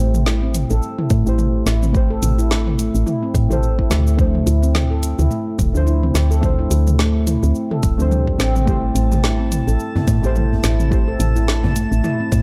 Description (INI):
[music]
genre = organic downtempo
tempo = 107 BPM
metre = 4/4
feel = swing 57% on 16ths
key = A minor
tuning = A4 = 440 Hz
[part]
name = deep mellow chord stab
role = accompaniment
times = 0.0-12.4 s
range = F3 to C5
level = -29 LUFS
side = equal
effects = chorus, sidechain pumping, tape echo
[part]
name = handpan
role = arpeggios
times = 0.0-12.4 s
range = G3 to A4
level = -25 LUFS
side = equal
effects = tape echo
[part]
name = woody FM bass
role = bass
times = 0.0-12.4 s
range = D1 to A2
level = -20 LUFS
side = equal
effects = sidechain pumping
[part]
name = deep house drum kit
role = drums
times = 0.1-12.4 s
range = hi-hat, shaker, snare drum, toms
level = -27 LUFS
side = equal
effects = small room ambience
[part]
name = electronic kick drum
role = drums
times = 1.1-12.4 s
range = none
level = -22 LUFS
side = equal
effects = small room ambience
[part]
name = drifting glass-harmonics texture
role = texture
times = 9.2-12.4 s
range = A5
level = -34 LUFS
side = equal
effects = chorus, built-in reverb
[part]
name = djembe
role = percussion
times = 9.0-12.4 s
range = none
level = -28 LUFS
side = equal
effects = none
[sound]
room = light reverb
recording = dark, warm production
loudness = -18 LUFS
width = mono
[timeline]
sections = 0.0-12.4 A section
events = none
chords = 0.0 Am7; 4.2 Dm7; 8.7 Am7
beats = 0.26 0.82 1.39 | 1.95 2.51 3.07 3.63 | 4.19 4.75 5.31 5.87 | 6.43 6.99 7.55 8.11 | 8.68 9.23 9.80 10.36 | 10.92 11.48 12.04